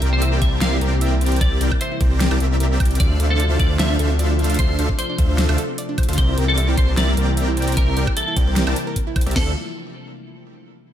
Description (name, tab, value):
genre	future bass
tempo	151 BPM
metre	4/4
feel	swing 54% on 16ths, half-time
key	D minor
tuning	A4 = 440 Hz
part	airy breathy pad	sustained chords	0.1-9.5 s	C3 to F4	-30 LUFS	left 1 dB	chorus, sidechain pumping
part	soft round pluck	arpeggios	0.0-9.5 s	C4 to G5	-31 LUFS	right 2 dB	chorus, sidechain pumping, ping-pong delay
part	dense compressed supersaw	riff	0.0-9.5 s	C4 to A5	-25 LUFS	equal	sidechain pumping, ping-pong delay
part	wide detuned saw bass	bass	0.0-9.5 s	C2 to D2	-19 LUFS	equal	chorus, sidechain pumping
part	big-room dance drum kit	drums	0.0-9.4 s	hi-hat, snare drum, woodblock	-26 LUFS	equal	overdrive
part	clean electric guitar	melody	0.1-9.5 s	A4 to F5	-27 LUFS	equal	ensemble chorus, sidechain pumping, diffuse ambient delay
part	trap drum kit	drums	0.4-9.5 s	crash cymbal, kick drum, snare drum	-19 LUFS	equal	none
room	light reverb, digital ambience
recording	none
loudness	-16 LUFS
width	side -10 dB against mid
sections	0.0-9.4 A section; 9.4-10.9 B section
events	drop 0.0-9.4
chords	0.0 C7; 3.0 Dm7; 6.2 C7; 9.4 Dm7